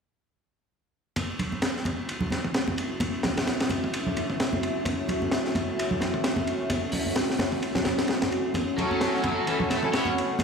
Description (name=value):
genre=breakbeat, breaks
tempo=130 BPM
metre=4/4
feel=swing 57% on 16ths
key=F# minor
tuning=A4 = 440 Hz
part: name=deep dark ambient pad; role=sustained chords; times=1.7-10.4 s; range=C#4 to F#5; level=-30 LUFS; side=left 1 dB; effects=chorus, built-in reverb, sidechain pumping
part: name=crunchy breakbeat drum kit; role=drums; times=1.2-10.4 s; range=hi-hat, kick drum, ride cymbal, snare drum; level=-28 LUFS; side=equal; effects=high-pass filter on kick, high-pass filter on cymbals, high-pass filter on hats, high-pass filter on snare, high-pass filter on room
part: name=congas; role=percussion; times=1.2-10.4 s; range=none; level=-32 LUFS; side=right 1 dB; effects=none
part: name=cranked stack guitar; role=riff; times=8.8-10.1 s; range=E3 to B3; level=-30 LUFS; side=equal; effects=overdrive, tube saturation, dub echo
part: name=rich studio string section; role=stabs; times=8.8-10.1 s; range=C#4 to C#5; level=-27 LUFS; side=right 1 dB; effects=dub echo
room=moderate plate reverb, RT60 1.2 s, studio ambience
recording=played on a big sound system in a bare room, large studio reverb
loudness=-24 LUFS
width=side -5 dB against mid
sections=1.2-10.4 A section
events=none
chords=1.2 F#m7